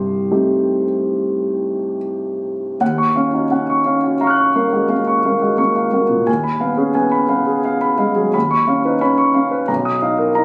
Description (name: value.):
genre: classical, impressionist solo piano.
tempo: 69-91 BPM.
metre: 5/4.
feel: rubato.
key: Eb minor.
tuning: A4 = 440 Hz.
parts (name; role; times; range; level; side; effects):
warm grand piano; solo; 0.0-10.4 s; B1 to Gb6; -17 LUFS; equal; none.
room: light reverb.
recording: recorded on a phone in the room, club reverb.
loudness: -17 LUFS.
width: mono.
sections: 0.0-2.8 A section; 2.8-10.4 B section.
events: none.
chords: 0.0 Cm6; 2.8 Ebm9; 6.3 Abm6/Eb; 8.3 Db9/Eb; 9.7 Bmaj7#11.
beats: 0.31 1.17 2.00 | 2.81 3.51 4.21 4.91 5.60 | 6.28 6.96 7.66 8.35 9.01 | 9.69 10.37.